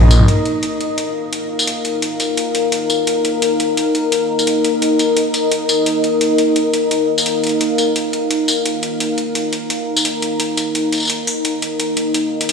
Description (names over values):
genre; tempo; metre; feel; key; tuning
half-time drum and bass; 172 BPM; 4/4; half-time; unclear; A4 = 440 Hz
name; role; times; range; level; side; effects
deep dark ambient pad; sustained chords; 0.0-12.5 s; Eb4 to Bb5; -16 LUFS; left 1 dB; chorus, built-in reverb
drum and bass drum kit; drums; 0.1-12.5 s; hi-hat, tambourine, toms; -20 LUFS; equal; none
room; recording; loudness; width
moderate huge ambient reverb, RT60 7.7 s; played on a big sound system in a bare room, stone room reverb; -15 LUFS; side -5 dB against mid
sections
0.3-12.5 A section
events
none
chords
0.3 Eb5